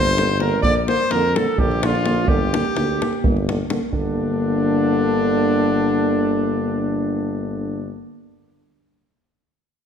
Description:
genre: balkan folk, Balkan brass band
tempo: 254 BPM (eighths)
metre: 7/8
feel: straight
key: G minor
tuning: A4 = 443 Hz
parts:
  - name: warm trumpet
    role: melody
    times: 0.0-8.0 s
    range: D4 to D5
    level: -24 LUFS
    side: left 3 dB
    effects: none
  - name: clear clarinet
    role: second line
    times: 0.0-8.0 s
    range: D4 to D5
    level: -26 LUFS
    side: right 3 dB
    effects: none
  - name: dark euphonium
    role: accompaniment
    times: 0.0-8.0 s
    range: Bb3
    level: -24 LUFS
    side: left 4 dB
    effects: none
  - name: warm euphonium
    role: accompaniment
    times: 0.0-8.0 s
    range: D3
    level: -26 LUFS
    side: right 4 dB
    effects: none
  - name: warm tuba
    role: bass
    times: 0.0-8.0 s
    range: G1 to F2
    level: -24 LUFS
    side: left 1 dB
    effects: none
  - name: davul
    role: percussion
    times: 0.1-4.2 s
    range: none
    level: -23 LUFS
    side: right 1 dB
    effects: none
room: wet recital hall reverb, RT60 1.5 s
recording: none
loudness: -17 LUFS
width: side -7 dB against mid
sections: 0.0-3.9 A section; 3.9-7.2 B section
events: none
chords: 0.0 Gm; 0.6 Bb; 2.3 Gm

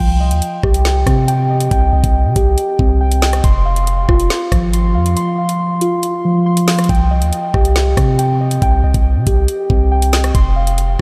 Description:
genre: hip hop, drill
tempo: 139 BPM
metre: 4/4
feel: half-time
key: C minor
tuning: A4 = 440 Hz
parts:
  - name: muted felt-like synth keys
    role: arpeggios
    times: 0.0-11.0 s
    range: F3 to C6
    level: -19 LUFS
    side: equal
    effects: chorus, delay
  - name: long sustained 808-style bass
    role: bass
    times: 0.0-11.0 s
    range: F1 to C3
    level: -17 LUFS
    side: equal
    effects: none
  - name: drill drum kit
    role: drums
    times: 0.3-10.9 s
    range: hi-hat, kick drum, rim click, snare drum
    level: -19 LUFS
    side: equal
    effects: none
room: moderate cathedral reverb, RT60 5.8 s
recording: dreamy mix soaked in reverb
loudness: -14 LUFS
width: mono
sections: 0.0-11.0 A section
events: kick muted 5.2-6.9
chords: 0.0 Cm; 3.4 Fm; 6.9 Cm; 10.3 F5

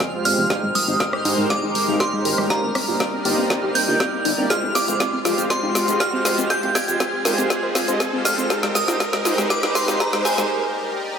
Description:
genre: progressive house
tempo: 120 BPM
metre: 4/4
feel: straight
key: F dorian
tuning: A4 = 440 Hz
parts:
  - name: lush unison pad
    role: sustained chords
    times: 0.0-11.2 s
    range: F3 to Eb5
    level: -28 LUFS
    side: left 1 dB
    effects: chorus, phaser, sidechain pumping
  - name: wide unison pluck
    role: arpeggios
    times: 0.0-10.4 s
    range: Ab3 to D5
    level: -27 LUFS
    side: left 1 dB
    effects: sidechain pumping, tape echo
  - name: deep house drum kit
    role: drums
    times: 0.0-10.5 s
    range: hi-hat, rim click, shaker, snare drum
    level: -23 LUFS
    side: left 1 dB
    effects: none
  - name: electronic kick drum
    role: drums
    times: 0.0-10.1 s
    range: none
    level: -31 LUFS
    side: left 1 dB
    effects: high-pass filter on kick, high-pass filter on room
  - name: riser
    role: sound effects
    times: 0.1-10.5 s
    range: none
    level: -30 LUFS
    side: right 1 dB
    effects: none
  - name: twinkling granular texture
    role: texture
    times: 0.0-10.5 s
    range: F6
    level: -35 LUFS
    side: right 1 dB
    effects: built-in reverb, sidechain pumping
  - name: soft supersaw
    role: stabs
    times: 0.1-10.5 s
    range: Ab3 to F5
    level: -26 LUFS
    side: right 2 dB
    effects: sidechain pumping, low-pass filter, tape echo
  - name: glassy synth bell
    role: melody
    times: 0.3-10.5 s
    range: Ab5 to Ab6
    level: -24 LUFS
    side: right 1 dB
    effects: chorus, tape echo
  - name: fat analog bass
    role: bass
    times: 0.3-10.5 s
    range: F1 to Ab2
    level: -29 LUFS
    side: left 1 dB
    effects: sidechain pumping, high-pass filter
room: moderate lush hall reverb, RT60 1.9 s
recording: high-pass filter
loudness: -18 LUFS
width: side -7 dB against mid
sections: 0.0-11.2 A section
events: build-up 0.0-11.2; drum fill 0.0-10.5; filter sweep on synth pluck 0.0-11.2; filter sweep on supersaw synth 0.0-11.2; riser 0.1-10.5; break 10.5-11.2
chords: 0.0 Fmadd9; 0.5 Abmaj7; 2.5 Cm7/G; 4.5 Fmadd9; 8.5 Abmaj7; 10.5 Ebmaj7/G

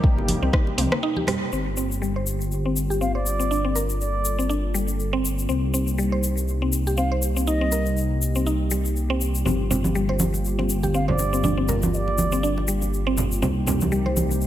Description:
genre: afro house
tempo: 121 BPM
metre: 4/4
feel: swing 56% on 16ths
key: unclear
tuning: A4 = 440 Hz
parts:
  - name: warm analog pad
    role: sustained chords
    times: 0.0-14.5 s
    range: C3 to A4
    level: -29 LUFS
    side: equal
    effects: chorus, sidechain pumping
  - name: electronic kick drum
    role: drums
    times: 0.0-0.6 s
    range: none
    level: -19 LUFS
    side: equal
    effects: none
  - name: dark detuned saw bass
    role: bass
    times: 0.2-14.5 s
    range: G1 to C2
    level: -25 LUFS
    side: equal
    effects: sidechain pumping
  - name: congas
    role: percussion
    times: 0.2-1.4, 9.5-14.4 s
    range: none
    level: -26 LUFS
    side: right 2 dB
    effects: none
  - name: deep house drum kit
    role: drums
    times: 0.3-1.4 s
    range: hi-hat, rim click, toms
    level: -28 LUFS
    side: equal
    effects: overdrive
  - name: mallet-like synth pluck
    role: arpeggios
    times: 0.4-14.2 s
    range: G3 to C5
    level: -27 LUFS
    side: equal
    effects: chorus, sidechain pumping, tape echo
  - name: tube shaker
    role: percussion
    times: 1.5-14.5 s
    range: none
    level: -31 LUFS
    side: left 5 dB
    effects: none
  - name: bansuri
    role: melody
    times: 3.0-8.0, 10.9-12.6 s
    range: D5 to F5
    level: -30 LUFS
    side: right 2 dB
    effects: tape echo
room: light reverb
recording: none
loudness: -21 LUFS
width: side -12 dB against mid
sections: 0.0-1.5 A section; 1.5-14.5 B section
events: break 1.0-1.5; band accent 1.3; filter sweep on synth arpeggio sound 1.5-14.5; filter sweep on analog synth pad 1.5-14.5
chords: 0.0 Cm7; 1.5 Gm7; 5.5 Cm7; 9.5 Gm7; 13.4 Cm7

